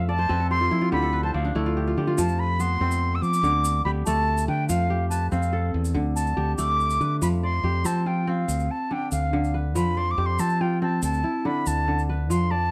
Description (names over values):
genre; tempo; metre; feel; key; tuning
west african traditional, West African string and xylophone music; 95 BPM (dotted quarters); 12/8; straight; F lydian; A4 = 440 Hz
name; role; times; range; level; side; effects
reedy silver concert flute; melody; 0.0-12.7 s; F5 to E6; -29 LUFS; equal; plate reverb
kora; arpeggios; 0.0-12.7 s; D3 to F5; -30 LUFS; equal; none
modern bright fingered electric bass; bass; 0.0-12.7 s; D2 to F3; -27 LUFS; equal; none
tube shaker; percussion; 2.2-12.4 s; none; -39 LUFS; equal; none
room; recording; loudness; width
light reverb; none; -24 LUFS; mono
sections
0.0-7.2 A section; 7.2-12.7 B section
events
kora fill 0.0-2.2; flute solo 0.0-7.2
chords
0.0 F; 0.9 D5; 2.2 F5; 3.4 D5; 4.7 F; 6.0 D5; 7.2 F5; 8.5 Dm; 9.8 F5; 11.0 Dm